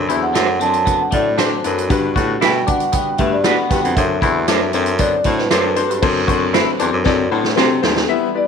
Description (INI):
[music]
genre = uptempo 1960s-style soul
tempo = 116 BPM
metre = 4/4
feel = straight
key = unclear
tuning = A4 = 440 Hz
[part]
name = clear upright piano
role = accompaniment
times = 0.0-8.5 s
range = G2 to E5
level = -21 LUFS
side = left 10 dB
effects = none
[part]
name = percussive tonewheel organ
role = sustained chords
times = 0.0-8.5 s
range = F#3 to F#4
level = -30 LUFS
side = right 2 dB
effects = none
[part]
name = warm baritone saxophone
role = bass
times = 0.0-8.0 s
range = Eb2 to C3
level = -20 LUFS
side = right 2 dB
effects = none
[part]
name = vibraphone with soft mallets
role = melody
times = 0.1-8.5 s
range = B4 to A5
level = -20 LUFS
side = right 1 dB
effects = none
[part]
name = clean electric guitar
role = riff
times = 0.1-8.1 s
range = A3 to F#4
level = -24 LUFS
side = left 11 dB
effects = analog chorus
[part]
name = swinging big-band drum kit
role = drums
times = 0.1-8.1 s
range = crash cymbal, hi-hat, kick drum, snare drum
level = -21 LUFS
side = right 2 dB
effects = none
[part]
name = electric guitar through a small old amp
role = stabs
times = 0.3-7.7 s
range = D4 to C5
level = -21 LUFS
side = right 13 dB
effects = tremolo
[sound]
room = light reverb, small room reverb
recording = 1960s-style stereo with parts hard left and right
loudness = -14 LUFS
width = side -6 dB against mid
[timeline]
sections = 0.0-6.0 A section; 6.0-8.1 B section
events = vibraphone solo 0.0-6.0; drum fill 7.1-8.1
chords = 0.0 D7; 1.9 Gmaj7; 4.0 D7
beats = 0.35 0.87 1.38 | 1.90 2.42 2.93 3.45 | 3.96 4.48 5.00 5.51 | 6.03 6.54 7.06 7.58 | 8.09